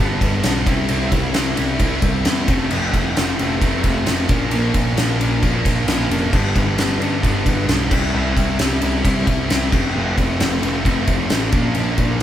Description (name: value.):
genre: quiet-loud alternative rock.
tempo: 133 BPM.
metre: 4/4.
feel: straight.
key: unclear.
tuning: A4 = 441 Hz.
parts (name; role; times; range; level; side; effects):
thick fuzz guitar; riff; 0.0-12.2 s; F2 to E4; -21 LUFS; equal; distortion.
fuzz picked electric bass; bass; 0.0-12.2 s; F1 to E2; -22 LUFS; equal; overdrive.
oversized low-tuned drum kit; drums; 0.2-12.2 s; crash cymbal, kick drum, ride cymbal, snare drum; -19 LUFS; equal; none.
room: light reverb.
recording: band playing live in one room.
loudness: -16 LUFS.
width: side -11 dB against mid.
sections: 0.0-12.2 A section.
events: none.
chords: 0.0 G; 0.7 C; 2.5 F; 4.3 Bb; 6.3 G; 7.9 C; 9.7 F; 11.5 Bb.